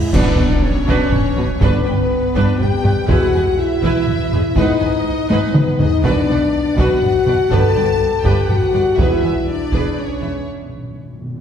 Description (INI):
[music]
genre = cinematic, epic orchestral film score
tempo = 122 BPM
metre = 3/4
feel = straight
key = B minor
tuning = A4 = 445 Hz
[part]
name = rich symphonic violin section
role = melody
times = 0.0-10.3 s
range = F#4 to G#5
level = -31 LUFS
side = left 3 dB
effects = none
[part]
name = clear symphonic violin section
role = second line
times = 0.0-10.5 s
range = B4 to A5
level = -27 LUFS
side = left 3 dB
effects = none
[part]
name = rich symphonic viola section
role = accompaniment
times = 0.0-10.3 s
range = D4 to E5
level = -25 LUFS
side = right 2 dB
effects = none
[part]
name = warm French horn section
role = sustained chords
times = 0.0-10.5 s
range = B3 to A4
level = -18 LUFS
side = left 3 dB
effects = none
[part]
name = rich studio double bass section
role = bass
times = 0.0-10.3 s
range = E1 to B1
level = -23 LUFS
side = right 2 dB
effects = none
[part]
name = rich symphonic cello section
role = bass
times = 0.0-10.3 s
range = E2 to B2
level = -24 LUFS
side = right 2 dB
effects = none
[part]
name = cymbal swell and sub drop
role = sound effects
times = 0.0-1.6 s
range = none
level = -26 LUFS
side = equal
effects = none
[part]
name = bright trombone section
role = sustained chords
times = 0.1-9.1 s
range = F#2 to B3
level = -30 LUFS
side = right 3 dB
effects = none
[part]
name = taiko ensemble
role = drums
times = 0.1-10.2 s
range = none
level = -20 LUFS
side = equal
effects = none
[part]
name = clash cymbals and concert bass drum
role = percussion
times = 0.1-1.1 s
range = none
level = -22 LUFS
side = equal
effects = none
[part]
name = timpani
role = percussion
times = 0.1-0.8, 10.5-11.4 s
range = B2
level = -27 LUFS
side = equal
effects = none
[sound]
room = wet concert hall reverb, RT60 2.3 s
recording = heard from further back in the room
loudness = -14 LUFS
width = side -8 dB against mid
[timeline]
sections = 0.1-11.4 A section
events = band accent 0.1-0.6; impact 0.1-1.6; drum fill 5.3-6.0; break 10.5-11.4; timpani fill 10.5-11.4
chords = 0.1 Bm; 1.6 G; 3.1 E; 4.6 G#m; 6.0 Bm; 7.5 G; 9.0 E; 10.5 N.C.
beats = | 0.14 0.63 1.12 | 1.61 2.10 2.59 | 3.08 3.58 4.07 | 4.56 5.05 5.54 | 6.04 6.53 7.02 | 7.51 8.00 8.49 | 8.99 9.48 9.97 | 10.46 10.95